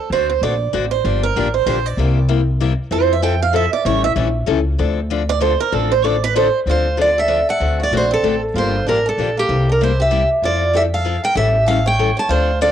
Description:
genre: acoustic string swing (jazz manouche)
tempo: 192 BPM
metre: 3/4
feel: swing 60% on 8ths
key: D minor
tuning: A4 = 440 Hz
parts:
  - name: picked swing-style acoustic guitar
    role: second line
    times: 0.0-12.7 s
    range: Bb3 to G5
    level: -20 LUFS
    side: right 9 dB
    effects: cassette tape
  - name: picked steel-string acoustic guitar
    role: accompaniment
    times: 0.1-12.7 s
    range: C3 to A4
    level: -22 LUFS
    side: left 10 dB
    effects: cassette tape
  - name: upright bass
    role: bass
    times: 0.1-12.7 s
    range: G1 to F2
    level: -20 LUFS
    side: equal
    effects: none
  - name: picked steel-string acoustic guitar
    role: melody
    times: 6.7-12.7 s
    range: G4 to A5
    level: -16 LUFS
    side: right 1 dB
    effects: none
room: moderate spring reverb, RT60 1.2 s, small room ambience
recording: home recording on cassette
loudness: -14 LUFS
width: side -10 dB against mid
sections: 0.0-6.7 A section; 6.7-12.7 B section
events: steel-string acoustic guitar solo 0.0-6.7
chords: 0.1 D7; 1.0 Gm7; 2.0 C7; 2.9 Fmaj7; 3.9 A7; 4.8 Dm7; 7.6 D7; 8.5 Gm7; 9.5 C7; 10.4 Fmaj7; 11.4 A7

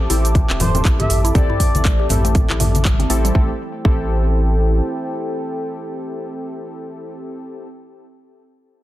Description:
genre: afro house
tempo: 120 BPM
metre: 4/4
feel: swing 59% on 16ths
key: A minor pentatonic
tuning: A4 = 440 Hz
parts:
  - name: dark analog pad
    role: sustained chords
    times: 0.0-7.2 s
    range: E4 to D6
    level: -29 LUFS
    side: right 1 dB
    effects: chorus, sidechain pumping
  - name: warm analog keys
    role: stabs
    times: 0.0-7.7 s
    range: C4 to A4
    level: -26 LUFS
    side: left 2 dB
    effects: chorus, sidechain pumping, digital delay
  - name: round analog bass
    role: bass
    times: 0.0-4.8 s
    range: E1 to A1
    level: -19 LUFS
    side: equal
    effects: sidechain pumping
  - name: mallet-like synth pluck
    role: arpeggios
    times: 0.1-4.0 s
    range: E3 to G4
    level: -27 LUFS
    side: left 1 dB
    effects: chorus, phaser, sidechain pumping, digital delay
  - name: afro-pop drum kit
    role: drums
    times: 0.1-3.3 s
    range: handclaps, hi-hat, shaker, toms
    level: -22 LUFS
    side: right 1 dB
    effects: overdrive
  - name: congas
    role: percussion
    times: 0.1-3.1 s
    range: none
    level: -25 LUFS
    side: left 2 dB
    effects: none
  - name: electronic kick drum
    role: drums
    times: 0.3-4.0 s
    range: none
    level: -16 LUFS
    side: equal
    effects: none
  - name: expressive synth lead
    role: melody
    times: 0.6-2.1 s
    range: C5 to E5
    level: -26 LUFS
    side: left 2 dB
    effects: lush chorus, digital delay
room: little or no reverb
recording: dense, heavily limited modern master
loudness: -15 LUFS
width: side -15 dB against mid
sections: 0.0-3.3 A section; 3.3-7.3 B section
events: drop 0.0-3.3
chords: 0.0 Am7

